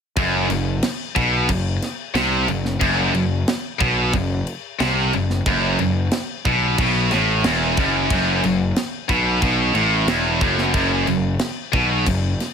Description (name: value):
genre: heavy metal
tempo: 91 BPM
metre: 4/4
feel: straight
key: F# minor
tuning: A4 = 435 Hz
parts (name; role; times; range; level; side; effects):
- heavy high-gain guitar; riff; 0.2-12.3 s; E2 to B#2; -21 LUFS; left 9 dB; distortion
- tight distorted guitar; riff; 0.2-12.3 s; E2 to B#2; -22 LUFS; right 13 dB; distortion
- fuzz picked electric bass; bass; 0.2-12.4 s; E1 to B#1; -24 LUFS; equal; overdrive
- tight metal drum kit; drums; 0.2-12.5 s; crash cymbal, kick drum, snare drum; -25 LUFS; equal; none
room: light reverb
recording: none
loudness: -17 LUFS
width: side -7 dB against mid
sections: 0.2-12.5 A section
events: none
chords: 0.2 F#m